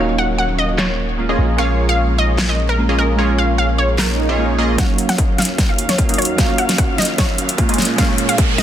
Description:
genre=future bass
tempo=150 BPM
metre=4/4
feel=half-time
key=Eb minor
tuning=A4 = 439 Hz
part: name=glassy digital keys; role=accompaniment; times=0.0-8.6 s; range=Gb3 to F5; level=-24 LUFS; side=right 3 dB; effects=chorus, sidechain pumping, tape echo
part: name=dark studio string section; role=sustained chords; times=0.0-8.6 s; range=Eb2 to F5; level=-28 LUFS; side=left 1 dB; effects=sidechain pumping, low-pass filter
part: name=supersaw stab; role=riff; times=0.0-8.6 s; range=Bb3 to Eb5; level=-22 LUFS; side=right 1 dB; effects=sidechain pumping, low-pass filter, tape echo
part: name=long sustained 808-style bass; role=bass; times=0.0-4.8 s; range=Eb1 to Bb1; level=-18 LUFS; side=equal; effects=sidechain pumping
part: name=downlifter, swell and riser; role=sound effects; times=0.0-8.6 s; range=none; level=-28 LUFS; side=right 1 dB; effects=none
part: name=wide unison pluck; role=melody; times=0.2-8.6 s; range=Bb4 to Gb5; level=-22 LUFS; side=equal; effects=sidechain pumping, tape echo
part: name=dubstep drum kit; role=drums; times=0.8-8.6 s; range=handclaps, hi-hat, snare drum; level=-21 LUFS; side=equal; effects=low-pass filter on hats, low-pass filter on snare, low-pass filter on cymbals
part: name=electronic kick drum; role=drums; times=4.8-8.5 s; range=none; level=-17 LUFS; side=equal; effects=distortion
room=light reverb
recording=dense, heavily limited modern master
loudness=-14 LUFS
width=side -10 dB against mid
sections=0.0-4.8 A section; 4.8-8.6 B section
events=filter sweep on supersaw synth 0.0-4.8; swell 4.1-4.8; build-up 4.8-8.6; drum fill 4.8-8.6; riser 4.8-8.6; filter sweep on string section 4.8-8.6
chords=0.0 Ebm7; 1.4 Bbm7; 4.8 Ebm7; 7.8 Bbm7

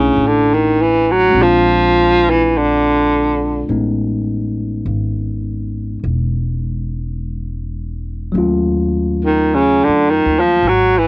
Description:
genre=jazz ballad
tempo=52 BPM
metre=4/4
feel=swing 68% on 8ths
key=unclear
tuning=A4 = 440 Hz
part: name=warm baritone saxophone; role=melody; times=0.0-11.1 s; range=C#3 to F#3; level=-12 LUFS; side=right 1 dB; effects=cassette tape
part: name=barky tine electric piano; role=accompaniment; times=0.0-10.6 s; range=F#3 to E#4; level=-20 LUFS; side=left 2 dB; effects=cassette tape
part: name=upright bass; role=bass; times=0.0-11.1 s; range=E1 to F#2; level=-21 LUFS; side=equal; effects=none
room=light reverb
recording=home recording on cassette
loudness=-13 LUFS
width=side -23 dB against mid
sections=0.0-11.1 A section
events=baritone saxophone solo 0.0-11.1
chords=0.0 Bm11 (rootless); 1.3 A#9; 3.7 Amaj9#11; 8.3 D#m7b5

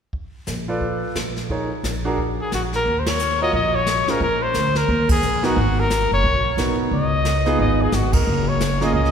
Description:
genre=jazz, small-group swing and bop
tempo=177 BPM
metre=4/4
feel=swing 62% on 8ths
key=Eb minor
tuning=A4 = 441 Hz
part: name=jazz brush drum kit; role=drums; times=0.1-9.1 s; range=brushed snare drum, hi-hat, kick drum, ride cymbal, snare drum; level=-26 LUFS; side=equal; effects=none
part: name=upright bass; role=bass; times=0.5-9.1 s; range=Gb1 to Eb2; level=-22 LUFS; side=equal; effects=none
part: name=clear grand piano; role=accompaniment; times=0.7-9.1 s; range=Bb3 to D5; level=-25 LUFS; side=right 2 dB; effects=none
part: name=breathy trumpet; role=melody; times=2.4-9.1 s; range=Gb4 to Eb5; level=-21 LUFS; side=left 2 dB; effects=none
room=wet church reverb, RT60 2.9 s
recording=recorded in a church or concert hall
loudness=-18 LUFS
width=side -7 dB against mid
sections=0.1-2.9 A section; 2.9-9.1 B section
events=band accent 3.0, 5.1, 8.1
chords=0.1 Bbmaj7; 1.5 Gb69; 2.2 N.C.; 2.9 Eb7sus2; 4.2 Bbsus2; 4.9 Eb5; 5.6 Abm9; 6.9 Db9; 8.3 Gbmaj9

